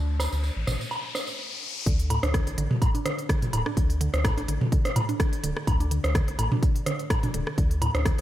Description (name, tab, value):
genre	minimal techno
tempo	126 BPM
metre	4/4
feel	swing 54% on 16ths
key	unclear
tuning	A4 = 440 Hz
part	rubbery square bass	bass	0.0-8.2 s	D1 to D2	-27 LUFS	equal	sidechain pumping
part	riser	sound effects	0.0-1.9 s	none	-35 LUFS	left 4 dB	none
part	warbly tape-like pad	texture	0.0-1.4 s	A3 to A5	-45 LUFS	equal	chorus, built-in reverb, sidechain pumping
part	booming analog drum machine	percussion	0.2-8.0 s	rim click, toms, woodblock	-29 LUFS	right 1 dB	tape echo
part	tambourine	percussion	0.2-1.4 s	none	-39 LUFS	right 3 dB	none
part	mallet-like synth pluck	riff	1.9-8.1 s	A2 to D4	-30 LUFS	equal	chorus, sidechain pumping, analog delay
part	electronic kick drum	drums	1.9-8.2 s	none	-24 LUFS	equal	none
part	house drum kit	drums	1.9-8.2 s	hi-hat, rim click	-33 LUFS	equal	none
room	light reverb, digital ambience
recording	none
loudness	-23 LUFS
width	side -13 dB against mid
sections	0.0-1.9 A section; 1.9-8.2 B section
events	riser 0.0-1.9; drop 1.9-8.2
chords	0.0 D5